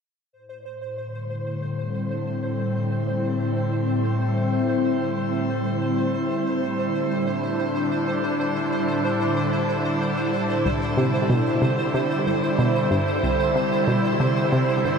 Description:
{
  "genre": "ambient, sequencer-driven space music",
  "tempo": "93 BPM",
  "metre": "4/4",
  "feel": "straight",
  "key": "A minor",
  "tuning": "A4 = 440 Hz",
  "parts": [
    { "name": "evolving wavetable pad", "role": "sustained chords", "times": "1.0-15.0 s", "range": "A2 to C5", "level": "-23 LUFS", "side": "equal", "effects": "ensemble chorus, built-in reverb" },
    { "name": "pulsing gated texture", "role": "texture", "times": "0.3-15.0 s", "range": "C5", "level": "-28 LUFS", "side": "right 1 dB", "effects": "chorus, built-in reverb" },
    { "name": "analog pluck", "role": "riff", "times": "10.7-15.0 s", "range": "C2 to C3", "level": "-23 LUFS", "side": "equal", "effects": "chorus, ping-pong delay" }
  ],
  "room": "wet shimmer reverb, RT60 8.2 s",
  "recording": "none",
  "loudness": "-21 LUFS",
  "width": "side -6 dB against mid",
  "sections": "0.3-15.0 A section",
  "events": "filter sweep on ambient pad 0.3-15.0",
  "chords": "0.3 Am; 10.7 C"
}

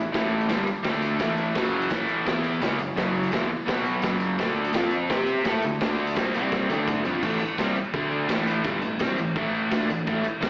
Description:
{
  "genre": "garage rock duo or trio",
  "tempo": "169 BPM",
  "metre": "4/4",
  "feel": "straight",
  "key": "unclear",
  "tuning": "A4 = 440 Hz",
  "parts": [
    { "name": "crunchy overdriven guitar", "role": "riff", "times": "0.0-10.5 s", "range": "E2 to C5", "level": "-24 LUFS", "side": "equal", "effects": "spring reverb, slapback echo" },
    { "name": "fuzz fingered electric bass", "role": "bass", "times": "0.0-10.5 s", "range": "E1 to C3", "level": "-31 LUFS", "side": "equal", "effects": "overdrive" },
    { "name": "raw garage drum kit", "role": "drums", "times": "0.1-10.5 s", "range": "crash cymbal, hi-hat, kick drum, snare drum, toms", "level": "-29 LUFS", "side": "equal", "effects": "none" },
    { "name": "tambourine", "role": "percussion", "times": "0.1-10.5 s", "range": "none", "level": "-50 LUFS", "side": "equal", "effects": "none" }
  ],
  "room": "light reverb",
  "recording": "live gig heard through the venue's PA, recital hall reverb, AM radio sound",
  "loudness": "-22 LUFS",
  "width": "side -25 dB against mid",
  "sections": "0.0-7.2 A section; 7.2-10.5 B section",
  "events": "drum fill 6.5-7.2",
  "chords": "0.0 A5; 0.9 D5; 1.2 A5; 1.6 F#5; 1.9 A5; 2.3 E5; 2.6 F#5; 3.7 B5; 4.0 F#5; 4.4 D5; 4.8 F5; 5.1 C5; 5.5 D5; 6.3 C5; 6.7 D5; 7.2 A5; 7.9 D5; 8.3 A5"
}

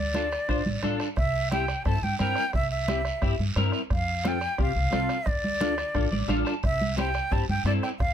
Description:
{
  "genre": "latin, cumbia",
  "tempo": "176 BPM",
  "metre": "4/4",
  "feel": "straight",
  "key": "unclear",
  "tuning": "A4 = 441 Hz",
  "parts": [
    { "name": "jazz flute", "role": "melody", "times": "0.0-8.1 s", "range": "D5 to A5", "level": "-29 LUFS", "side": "right 1 dB", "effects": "none" },
    { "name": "upright bass", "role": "bass", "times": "0.0-8.1 s", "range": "A1 to G2", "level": "-29 LUFS", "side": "equal", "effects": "none" },
    { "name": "semi-hollow electric guitar", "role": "accompaniment", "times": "0.1-7.9 s", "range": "C4 to A5", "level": "-30 LUFS", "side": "left 3 dB", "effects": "ensemble chorus" },
    { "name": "bombo", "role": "percussion", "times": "0.1-8.1 s", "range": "none", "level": "-31 LUFS", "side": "right 1 dB", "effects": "none" },
    { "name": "congas", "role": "percussion", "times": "0.1-8.1 s", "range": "none", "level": "-33 LUFS", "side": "right 3 dB", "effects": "none" },
    { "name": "guiro", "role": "percussion", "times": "0.1-8.1 s", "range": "none", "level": "-40 LUFS", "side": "right 4 dB", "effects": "none" }
  ],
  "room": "light reverb",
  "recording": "close, detailed microphones",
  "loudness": "-24 LUFS",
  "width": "side -9 dB against mid",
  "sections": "0.0-8.1 A section",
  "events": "clean electric guitar fill 6.0-6.6",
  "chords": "0.0 Dm; 1.2 C; 3.9 F; 5.3 Dm; 6.6 C"
}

